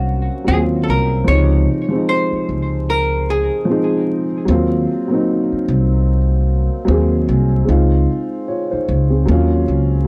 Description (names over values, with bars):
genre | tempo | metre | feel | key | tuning
hip hop | 75 BPM | 4/4 | swing 60% on 16ths | Eb dorian | A4 = 440 Hz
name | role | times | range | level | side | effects
archtop guitar, miked and amplified | melody | 0.0-4.0 s | Gb4 to Db5 | -24 LUFS | equal | analog delay
dark upright piano | accompaniment | 0.0-10.1 s | C3 to Db5 | -20 LUFS | equal | cassette tape
upright bass | bass | 0.0-10.1 s | C2 to Eb2 | -18 LUFS | equal | none
room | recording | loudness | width
little or no reverb | dark, warm production, vinyl crackle | -16 LUFS | mono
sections
0.0-10.1 A section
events
none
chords
0.0 Ebm69; 1.3 Dbmaj7; 4.5 Ebm69; 7.7 Dbmaj7; 9.3 Ebm9